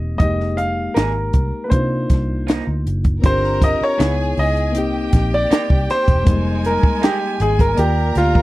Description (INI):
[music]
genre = lush 1970s-style soul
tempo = 79 BPM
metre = 4/4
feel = straight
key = C minor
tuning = A4 = 442 Hz
[part]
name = clear baby grand piano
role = melody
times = 0.0-8.4 s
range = F4 to F5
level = -20 LUFS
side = equal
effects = none
[part]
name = barky reed electric piano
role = accompaniment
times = 0.0-8.4 s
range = G3 to D5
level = -24 LUFS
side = left 3 dB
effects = overdrive
[part]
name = vintage muted fingered electric bass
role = bass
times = 0.0-8.4 s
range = E1 to C3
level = -20 LUFS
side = equal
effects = none
[part]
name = compact cocktail drum kit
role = drums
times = 0.2-8.4 s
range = hi-hat, kick drum, snare drum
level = -16 LUFS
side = equal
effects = none
[part]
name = electric guitar through a small old amp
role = riff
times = 1.0-7.2 s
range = F3 to Ab4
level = -27 LUFS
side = right 8 dB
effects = lush chorus
[part]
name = clear studio violin section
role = second line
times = 3.2-8.4 s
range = Ab3 to Bb5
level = -27 LUFS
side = equal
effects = none
[sound]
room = little or no reverb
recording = dry, close 1970s-style studio recording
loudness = -15 LUFS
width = side -18 dB against mid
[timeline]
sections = 0.0-3.2 A section; 3.2-8.4 B section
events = grand piano solo 3.2-8.4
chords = 0.2 Fm11; 1.7 Cm11; 3.2 G7sus4; 4.0 Dbm7; 4.8 Cm7; 6.3 Fm11; 7.8 Ebmaj9